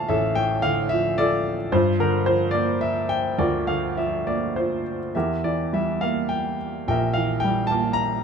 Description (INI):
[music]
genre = classical, lyrical solo piano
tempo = 100-113 BPM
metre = 3/4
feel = rubato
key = unclear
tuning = A4 = 439 Hz
[part]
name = clear grand piano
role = solo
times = 0.0-8.2 s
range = A1 to Bb5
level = -21 LUFS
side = equal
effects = none
[sound]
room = moderate studio ambience, RT60 0.5 s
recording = dark, warm production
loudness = -21 LUFS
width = side -6 dB against mid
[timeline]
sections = 0.0-8.2 A section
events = none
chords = 0.0 Dm; 1.7 Gm7; 5.1 Edim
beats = | 0.10 0.64 1.20 | 1.74 2.27 2.82 | 3.38 3.96 4.55 | 5.15 5.73 6.30 | 6.88 7.43 7.98